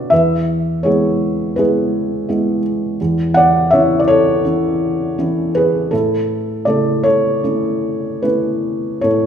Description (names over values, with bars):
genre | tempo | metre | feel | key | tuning
classical, lyrical solo piano | 74-85 BPM | 4/4 | rubato | unclear | A4 = 440 Hz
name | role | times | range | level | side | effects
felt-muted upright piano | solo | 0.0-9.3 s | E2 to F#5 | -14 LUFS | equal | none
room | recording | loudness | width
wet recital hall reverb, RT60 1.6 s | recorded in a church or concert hall | -14 LUFS | side -8 dB against mid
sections
0.0-9.3 A section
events
none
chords
0.1 E; 3.0 C#m/E; 5.9 A